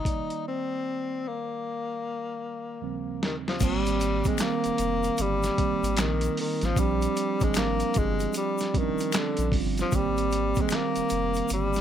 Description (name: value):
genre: R&B, neo-soul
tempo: 76 BPM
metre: 4/4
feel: swing 63% on 16ths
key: unclear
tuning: A4 = 440 Hz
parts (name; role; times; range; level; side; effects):
- breathy tenor saxophone; melody; 0.0-11.8 s; D3 to Eb4; -28 LUFS; left 4 dB; none
- mellow tine electric piano; accompaniment; 0.0-11.8 s; Eb2 to D5; -30 LUFS; right 13 dB; medium stereo tremolo
- boom bap sampler-style drum kit; drums; 0.1-11.8 s; crash cymbal, handclaps, hi-hat, kick drum, snare drum; -29 LUFS; equal; none
- round analog bass; bass; 3.6-11.8 s; F1 to Bb1; -30 LUFS; left 1 dB; none
- tube shaker and finger snaps; percussion; 3.6-11.8 s; none; -39 LUFS; left 13 dB; none
room: light reverb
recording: none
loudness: -24 LUFS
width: side -9 dB against mid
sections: 0.0-3.6 A section; 3.6-11.8 B section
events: break 0.4-3.6; drum fill 2.8-3.6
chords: 0.1 Cm9; 2.8 Eb13; 3.6 Abmaj9; 6.8 Bb6; 9.9 Abmaj9